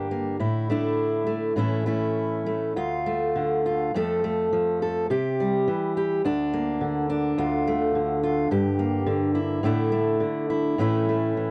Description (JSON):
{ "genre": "folk, solo fingerstyle acoustic guitar", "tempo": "104 BPM", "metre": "4/4", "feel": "rubato", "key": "D minor", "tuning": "A4 = 440 Hz", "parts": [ { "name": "fingerpicked steel-string acoustic guitar", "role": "solo", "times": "0.0-11.5 s", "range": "D2 to A4", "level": "-25 LUFS", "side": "equal", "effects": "none" } ], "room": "little or no reverb", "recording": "dry, close 1970s-style studio recording", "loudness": "-25 LUFS", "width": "mono", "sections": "0.0-2.8 A section; 2.8-11.5 B section", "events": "none", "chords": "0.4 Asus4; 1.6 A; 2.8 Dm; 3.9 F; 5.1 C; 6.2 Bb/D; 7.4 Dm; 8.5 Gm; 9.6 Asus4; 10.8 A" }